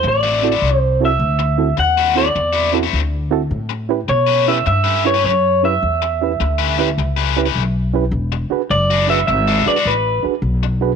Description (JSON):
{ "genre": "electric blues shuffle", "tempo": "104 BPM", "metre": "4/4", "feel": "swing 67% on 8ths", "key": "A mixolydian", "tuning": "A4 = 440 Hz", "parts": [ { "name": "electric guitar through a small old amp", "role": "melody", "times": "0.0-10.2 s", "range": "B4 to F#5", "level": "-17 LUFS", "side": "equal", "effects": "none" }, { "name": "overdriven electric guitar", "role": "riff", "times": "0.0-10.7 s", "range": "D3 to B4", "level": "-21 LUFS", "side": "left 18 dB", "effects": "none" }, { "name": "upright bass", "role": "bass", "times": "0.0-11.0 s", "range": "E1 to B2", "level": "-19 LUFS", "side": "left 1 dB", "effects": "none" }, { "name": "reed electric piano", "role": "accompaniment", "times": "0.4-10.9 s", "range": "C4 to B4", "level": "-21 LUFS", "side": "right 13 dB", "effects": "overdrive, fast tremolo" } ], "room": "light reverb", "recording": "1960s-style stereo with parts hard left and right", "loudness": "-14 LUFS", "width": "side -6 dB against mid", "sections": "0.0-11.0 A section", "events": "none", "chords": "0.0 D9; 3.5 A9; 8.1 E9" }